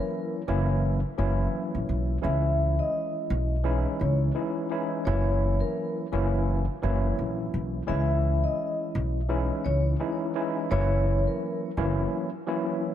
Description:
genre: hip hop, boom-bap hip-hop.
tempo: 85 BPM.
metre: 4/4.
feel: swing 59% on 16ths.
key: C# dorian.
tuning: A4 = 442 Hz.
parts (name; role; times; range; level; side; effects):
vibraphone with soft mallets; melody; 0.0-11.6 s; A#4 to E5; -32 LUFS; left 2 dB; high-pass filter, low-pass filter, ping-pong delay.
tine electric piano; accompaniment; 0.0-12.9 s; E3 to E4; -29 LUFS; equal; overdrive, fast stereo tremolo, high-pass filter, low-pass filter.
upright bass; bass; 0.5-12.0 s; F#1 to C#2; -26 LUFS; equal; none.
room: moderate lush hall reverb, RT60 2.4 s.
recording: dreamy mix soaked in reverb.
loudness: -24 LUFS.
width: side -11 dB against mid.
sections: 0.0-2.2 A section; 2.2-12.9 A section.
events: none.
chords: 0.0 F#7; 2.2 C#madd9; 5.1 F#7; 7.9 C#madd9; 10.7 F#7.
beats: 0.12 0.82 1.53 | 2.24 2.94 3.65 4.36 | 5.06 5.77 6.47 7.18 | 7.88 8.59 9.30 10.00 | 10.71 11.41 12.12 12.82.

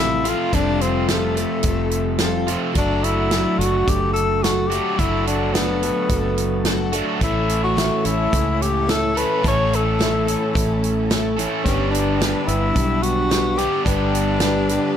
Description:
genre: folk rock and heartland rock.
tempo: 108 BPM.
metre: 4/4.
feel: straight.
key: D major.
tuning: A4 = 440 Hz.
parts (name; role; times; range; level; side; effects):
warm tenor saxophone; melody; 0.0-15.0 s; A3 to C#5; -22 LUFS; left 3 dB; slapback echo.
picked plugged-in twelve-string acoustic guitar; accompaniment; 0.0-15.0 s; A2 to B4; -26 LUFS; left 2 dB; none.
crunchy overdriven guitar; riff; 0.0-15.0 s; F2 to A4; -24 LUFS; right 2 dB; none.
fingered electric bass; bass; 0.0-14.8 s; F1 to C#2; -24 LUFS; right 1 dB; none.
natural country drum kit; drums; 0.3-14.8 s; hi-hat, kick drum, snare drum; -24 LUFS; right 1 dB; none.
rich symphonic string section; sustained chords; 7.2-15.0 s; G3 to C#5; -32 LUFS; right 1 dB; none.
room: light reverb.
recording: none.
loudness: -17 LUFS.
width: side -9 dB against mid.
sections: 0.0-15.0 A section.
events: none.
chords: 0.0 Fadd9; 2.8 D/F#; 7.2 A; 11.6 G.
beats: | 0.54 1.09 1.65 2.21 | 2.76 3.32 3.88 4.43 | 4.99 5.54 6.10 6.65 | 7.21 7.76 8.32 8.88 | 9.43 9.98 10.54 11.10 | 11.65 12.20 12.76 13.31 | 13.87 14.42.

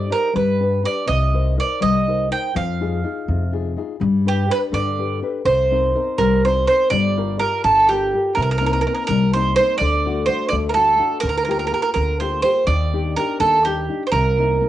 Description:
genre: italian folk, Italian serenade.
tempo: 83 BPM (dotted quarters).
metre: 6/8.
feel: straight.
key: C minor, G minor from 6.9 s.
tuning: A4 = 440 Hz.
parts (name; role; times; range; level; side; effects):
bowl-back mandolin; melody; 0.0-14.7 s; G4 to G5; -18 LUFS; right 3 dB; none.
nylon-string guitar; accompaniment; 0.0-14.7 s; C3 to C5; -23 LUFS; left 6 dB; none.
upright bass; bass; 0.0-14.6 s; G1 to G2; -23 LUFS; equal; none.
room: wet studio reverb, RT60 0.6 s.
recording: home recording on cassette, nothing above 10.3 kHz.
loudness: -16 LUFS.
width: side -13 dB against mid.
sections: 0.0-6.9 A section; 6.9-14.7 B section.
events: none.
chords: 0.4 G; 1.1 Cm7; 2.6 Fm7; 4.0 G; 5.5 Cm7; 6.9 Gm7; 8.4 Cm7; 9.8 D; 11.2 Gm7/D; 12.7 Ebmaj7; 14.1 Cm7.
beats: 0.36 | 1.09 1.82 | 2.56 3.28 | 4.00 4.72 | 5.45 6.18 | 6.91 7.64 | 8.36 9.08 | 9.80 10.52 | 11.23 11.95 | 12.67 13.40 | 14.12.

